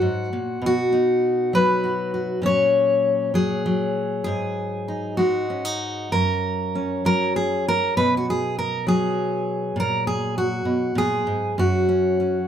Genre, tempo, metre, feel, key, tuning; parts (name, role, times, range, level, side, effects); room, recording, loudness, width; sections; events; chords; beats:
folk, solo fingerstyle acoustic guitar; 66 BPM (dotted quarters); 6/8; rubato; F# major; A4 = 439 Hz
fingerpicked steel-string acoustic guitar; solo; 0.0-12.5 s; F#2 to C#5; -20 LUFS; equal
light reverb; -20 LUFS; side -9 dB against mid
0.0-12.5 A section
0.0 F#add9; 0.6 B; 2.5 F#add9/A#; 4.3 G#5; 6.1 F#; 8.0 B5; 9.8 F#add9/A#; 11.6 F#5
| 0.65 1.55 | 2.46 3.36 | 4.26 5.18 | 6.11 7.04 | 7.96 8.87 | 9.76 10.66 | 11.57